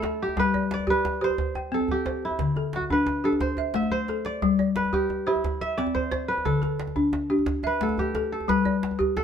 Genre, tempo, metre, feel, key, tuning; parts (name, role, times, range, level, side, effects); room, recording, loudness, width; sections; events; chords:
west african traditional, West African string and xylophone music; 118 BPM (dotted quarters); 12/8; straight; G major; A4 = 435 Hz
kora; melody; 0.0-9.2 s; D4 to E5; -28 LUFS; right 1 dB
balafon; arpeggios; 0.0-9.2 s; D3 to G5; -25 LUFS; left 2 dB
djembe; percussion; 0.0-9.2 s; -33 LUFS; right 3 dB
moderate studio reverb, RT60 0.8 s; band playing live in one room; -23 LUFS; side -8 dB against mid
0.0-9.2 A section
kora solo 0.0-9.2; drum fill 3.9-4.4
0.4 G; 1.4 C5; 2.4 D5; 3.4 Am; 4.4 G5; 5.4 N.C.; 6.5 D5; 7.5 A5; 8.5 G